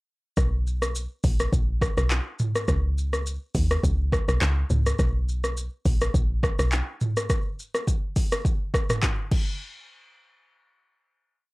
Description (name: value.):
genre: afrobeats.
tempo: 104 BPM.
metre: 4/4.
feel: swing 55% on 16ths.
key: B major.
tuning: A4 = 439 Hz.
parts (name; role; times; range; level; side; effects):
woody log drum bass; bass; 0.4-6.8 s; A#1 to D#2; -24 LUFS; equal; none.
afro-pop drum kit; drums; 0.4-9.5 s; crash cymbal, handclaps, hi-hat, kick drum, rim click, shaker, toms; -24 LUFS; equal; overdrive.
room: little or no reverb.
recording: dry, gritty hardware recording, cassette tape.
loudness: -22 LUFS.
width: side -23 dB against mid.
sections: 0.4-9.6 chorus; 9.6-11.5 final hit.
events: none.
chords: none.